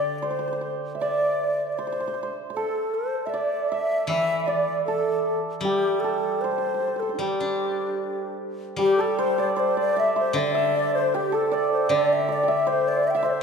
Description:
chinese traditional, Chinese chamber ensemble; 77 BPM; 4/4; rubato; G zhi mode; A4 = 438 Hz
xiao; melody; 0.0-13.4 s; D4 to G5; -25 LUFS; left 1 dB
hammered dulcimer; second line; 0.0-13.4 s; G4 to G5; -27 LUFS; right 5 dB
steel-string zither; accompaniment; 0.0-13.4 s; D3 to D4; -30 LUFS; left 1 dB
breathy bright xiao; second line; 8.8-13.4 s; G4 to E5; -26 LUFS; left 6 dB
moderate concert hall reverb, RT60 1.8 s; minimal, uncompressed stereo recording; -22 LUFS; side -6 dB against mid
0.0-8.8 A section; 8.8-13.4 B section

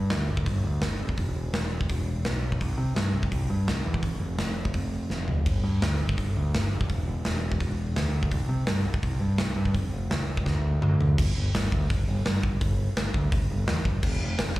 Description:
punk rock; 168 BPM; 4/4; straight; G mixolydian; A4 = 439 Hz
growling picked electric bass; bass; 0.0-14.6 s; E1 to C3; -26 LUFS; equal; overdrive
big rock drum kit; drums; 0.1-14.6 s; crash cymbal, hi-hat, kick drum, snare drum, toms; -28 LUFS; equal
little or no reverb; live gig heard through the venue's PA, club reverb; -24 LUFS; side -17 dB against mid
0.0-11.2 A section; 11.2-14.6 B section
drum fill 5.1-5.5, 10.5-11.2

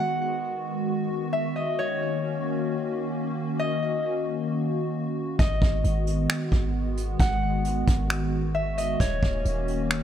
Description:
hip hop, atmospheric cloud-rap; 133 BPM; 4/4; half-time; G# minor; A4 = 440 Hz
concert harp; melody; 0.0-10.0 s; C#5 to F#5; -30 LUFS; left 2 dB; ping-pong delay
hollow soft pad; sustained chords; 0.0-10.0 s; D#3 to F#4; -28 LUFS; equal; ensemble chorus, sidechain pumping
warm 808-style bass; bass; 5.4-10.0 s; D#1 to G#1; -27 LUFS; equal
vintage brush drum kit; drums; 5.4-10.0 s; finger snaps, hi-hat, kick drum; -25 LUFS; right 1 dB
light reverb, small room ambience; -24 LUFS; side -10 dB against mid
0.0-10.0 A section
0.0 G#m7; 1.8 D#m7; 5.4 G#m7; 9.0 D#m7

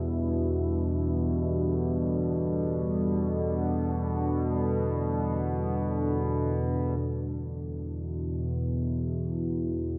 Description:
dark ambient drone; free time; A4 = 440 Hz
deep dark ambient pad; sustained chords; 0.0-10.0 s; G3 to B4; -34 LUFS; equal; chorus, built-in reverb
gamelan-type bossed gongs; arpeggios; 0.0-2.6 s; barely audible
analog drone; drone; 0.0-10.0 s; E2 to B2; -30 LUFS; equal; chorus
wet spring reverb, RT60 2.2 s; echo-heavy mix, cassette tape; -29 LUFS; mono
0.0-7.0 A section; 7.0-10.0 B section
0.0 Gsus2; 7.0 E5

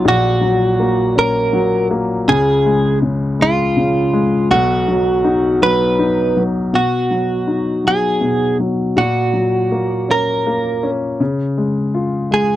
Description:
pop; 54 BPM (dotted quarters); 6/8; straight; B lydian; A4 = 439 Hz
direct-recorded clean electric guitar; melody; 0.0-12.6 s; E#4 to B4; -16 LUFS; right 2 dB
warm grand piano; accompaniment; 0.0-12.6 s; A#1 to E#4; -16 LUFS; left 2 dB
light reverb; dry, close 1970s-style studio recording; -14 LUFS; side -13 dB against mid
0.0-6.7 A section; 6.7-12.6 B section
0.0 F#/A#; 2.3 C#; 4.5 B; 9.0 F#/A#; 11.2 C#

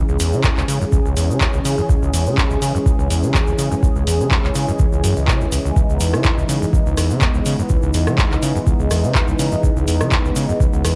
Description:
acid house; 124 BPM; 4/4; swing 54% on 16ths; C# minor; A4 = 440 Hz
warm analog pad; sustained chords; 0.0-11.0 s; E3 to G#4; -25 LUFS; equal; chorus, sidechain pumping, cassette tape
overdriven acid bass; riff; 0.0-11.0 s; B1 to C#3; -22 LUFS; equal; distortion, cassette tape
egg shaker; percussion; 0.1-11.0 s; -35 LUFS; equal
booming analog drum machine; drums; 0.2-10.9 s; handclaps, hi-hat, rim click; -26 LUFS; equal; cassette tape
electronic kick drum; drums; 0.4-10.7 s; -21 LUFS; equal; overdrive, cassette tape
light reverb; home recording on cassette; -17 LUFS; mono
0.0-11.0 A section
0.0 C#m

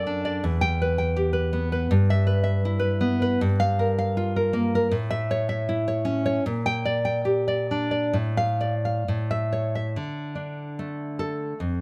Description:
romantic piece for solo classical guitar; 63-83 BPM; 2/4; rubato; D minor from 3.4 s; A4 = 439 Hz
nylon-string guitar; solo; 0.0-11.8 s; E2 to A5; -25 LUFS; equal
light reverb; close, detailed microphones; -25 LUFS; mono
0.0-10.0 A section; 10.0-11.8 B section
0.4 Em; 1.9 Em/G; 3.4 Gm7; 4.9 A; 6.4 Gm/Bb; 8.1 Dm/A; 9.1 A; 10.0 D5

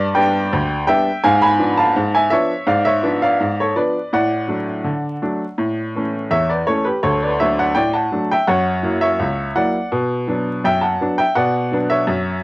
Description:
ragtime piano; 83 BPM; 2/4; straight; D major; A4 = 440 Hz
clear upright piano; solo; 0.0-12.4 s; C#2 to B5; -15 LUFS; equal; cassette tape
light reverb; home recording on cassette, vinyl crackle; -15 LUFS; side -21 dB against mid
0.0-12.4 A section
0.0 G; 1.2 G#dim7; 4.1 D/A; 5.6 A; 7.0 D; 8.5 F#7; 9.9 Bm

